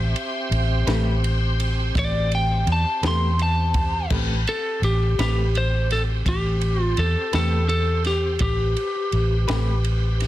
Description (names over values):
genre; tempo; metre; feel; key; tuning
slow blues; 56 BPM (dotted quarters); 12/8; straight; A minor; A4 = 441 Hz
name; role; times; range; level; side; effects
lightly driven lead guitar; melody; 0.0-10.3 s; G4 to C6; -25 LUFS; left 1 dB; plate reverb
bright tonewheel organ; sustained chords; 0.0-10.3 s; C4 to C5; -32 LUFS; equal; slow rotary speaker, overdrive, chorus vibrato
vintage muted fingered electric bass; bass; 0.0-10.3 s; A1 to E2; -21 LUFS; equal; none
compact cocktail drum kit; drums; 0.2-10.3 s; crash cymbal, kick drum, ride cymbal, snare drum; -29 LUFS; equal; none
electric guitar through a small old amp; accompaniment; 0.9-9.7 s; A3 to B4; -30 LUFS; left 3 dB; tremolo, plate reverb
room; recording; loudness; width
light reverb; dense, heavily limited modern master; -19 LUFS; side -14 dB against mid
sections
0.0-4.1 A section; 4.1-10.3 B section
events
lead electric guitar solo 0.0-4.1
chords
0.0 Am7; 4.1 Am9